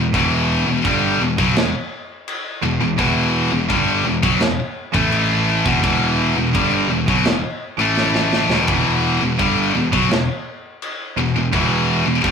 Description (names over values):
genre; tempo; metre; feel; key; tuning
heavy metal; 84 BPM; 4/4; straight; E minor; A4 = 439 Hz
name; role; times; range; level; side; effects
heavy high-gain guitar; riff; 0.0-12.3 s; E2 to A3; -18 LUFS; left 6 dB; distortion
scooped high-gain guitar; riff; 0.0-12.3 s; E2 to A3; -22 LUFS; right 7 dB; distortion
picked electric bass; bass; 0.0-12.3 s; E1 to B1; -22 LUFS; right 1 dB; none
tight metal drum kit; drums; 0.1-12.3 s; china cymbal, kick drum, snare drum; -24 LUFS; right 1 dB; none
room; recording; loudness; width
moderate studio ambience, RT60 0.5 s; rough rehearsal-room recording, warm saturation; -15 LUFS; side -6 dB against mid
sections
0.0-12.3 A section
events
drum fill 8.0-8.7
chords
0.0 Em; 4.9 A5; 5.7 Em; 7.8 A5; 8.5 Em